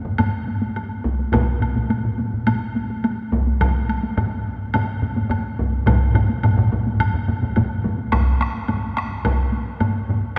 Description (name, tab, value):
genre	japanese traditional, taiko drum ensemble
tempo	106 BPM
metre	4/4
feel	straight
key	none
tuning	none
part	taiko ensemble	percussion	0.0-0.3, 4.2-10.2 s	none	-26 LUFS	equal	none
part	taiko ensemble	percussion	0.2-10.3 s	none	-28 LUFS	equal	none
part	woodblock	percussion	0.2-10.4 s	none	-33 LUFS	equal	none
part	taiko ensemble	percussion	1.0-9.4 s	none	-26 LUFS	equal	none
part	taiko ensemble	percussion	1.3-10.4 s	none	-27 LUFS	equal	none
room	wet church reverb, RT60 3.7 s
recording	recorded in a church or concert hall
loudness	-21 LUFS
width	mono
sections	0.0-8.1 A section; 8.1-10.4 B section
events	none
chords	none